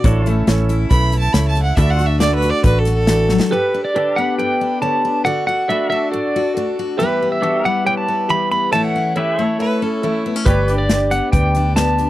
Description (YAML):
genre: honky-tonk and classic country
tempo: 138 BPM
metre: 4/4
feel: straight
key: D major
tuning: A4 = 441 Hz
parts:
  - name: clear grand piano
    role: accompaniment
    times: 0.0-12.1 s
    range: E4 to E5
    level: -25 LUFS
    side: right 6 dB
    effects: none
  - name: picked steel-string acoustic guitar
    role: accompaniment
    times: 0.0-12.1 s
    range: E2 to G4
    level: -22 LUFS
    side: left 4 dB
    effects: none
  - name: pedal steel guitar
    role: sustained chords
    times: 0.0-12.1 s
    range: C#4 to D5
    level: -27 LUFS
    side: left 1 dB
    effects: lush chorus
  - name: vintage muted fingered electric bass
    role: bass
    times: 0.0-3.4, 10.5-12.1 s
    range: G1 to D2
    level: -17 LUFS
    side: equal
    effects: none
  - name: natural country drum kit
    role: drums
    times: 0.0-3.5, 10.5-12.1 s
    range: hi-hat, kick drum, snare drum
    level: -18 LUFS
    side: equal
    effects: none
  - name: clear fiddle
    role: second line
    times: 0.9-3.5, 9.6-10.4 s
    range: E4 to B5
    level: -21 LUFS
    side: right 2 dB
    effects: none
  - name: pedal steel guitar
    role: melody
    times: 3.5-12.1 s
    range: B4 to B5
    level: -18 LUFS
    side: equal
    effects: none
room: little or no reverb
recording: dry, close 1970s-style studio recording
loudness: -14 LUFS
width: side -15 dB against mid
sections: 0.0-3.5 A section; 3.5-12.1 B section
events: fiddle solo 0.0-3.5; drum fill 3.3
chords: 0.0 A; 1.8 D; 3.5 Gadd9; 5.2 D; 7.0 Em; 8.7 A; 10.5 G